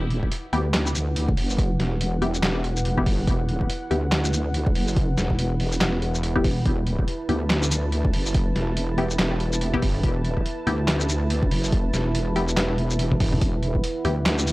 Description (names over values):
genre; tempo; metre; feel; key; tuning
deep dubstep; 142 BPM; 4/4; swing 58% on 16ths, half-time; E minor; A4 = 440 Hz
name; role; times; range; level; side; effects
dark analog pad; sustained chords; 0.3-14.5 s; E4 to A5; -31 LUFS; right 1 dB; chorus
wobble bass; bass; 0.0-14.5 s; E1 to D2; -24 LUFS; equal; chorus
trip hop sampler-style drum kit; drums; 0.1-14.5 s; handclaps, hi-hat, shaker, snare drum, toms; -27 LUFS; equal; none
electronic kick drum; drums; 0.2-13.8 s; none; -24 LUFS; equal; overdrive
filtered dub chord stab; stabs; 0.5-14.1 s; B3 to G4; -29 LUFS; left 2 dB; phaser, dub echo
room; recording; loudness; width
little or no reverb; dry, gritty hardware recording, transformer saturation; -21 LUFS; side -20 dB against mid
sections
0.0-14.5 A section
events
drum fill 13.1-13.4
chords
0.0 Em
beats
0.32 0.74 1.16 | 1.58 2.01 2.43 2.85 | 3.27 3.70 4.12 4.54 | 4.96 5.39 5.81 6.23 | 6.66 7.08 7.50 7.92 | 8.35 8.77 9.19 9.61 | 10.04 10.46 10.88 11.30 | 11.72 12.15 12.57 12.99 | 13.41 13.84 14.26